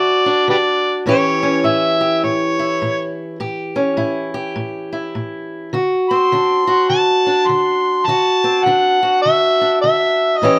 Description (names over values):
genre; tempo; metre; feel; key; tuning
acoustic country blues, solo or duo; 103 BPM; 4/4; swing 61% on 8ths; unclear; A4 = 440 Hz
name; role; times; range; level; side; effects
overdriven harmonica; melody; 0.0-10.6 s; G4 to C6; -18 LUFS; equal; none
fingerpicked steel-string acoustic guitar; accompaniment; 0.0-10.6 s; A2 to G4; -20 LUFS; equal; none
room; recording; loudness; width
moderate small room reverb, RT60 0.6 s; close, detailed microphones; -16 LUFS; mono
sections
0.0-10.6 A section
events
none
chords
0.0 D7; 1.1 A7; 5.7 D7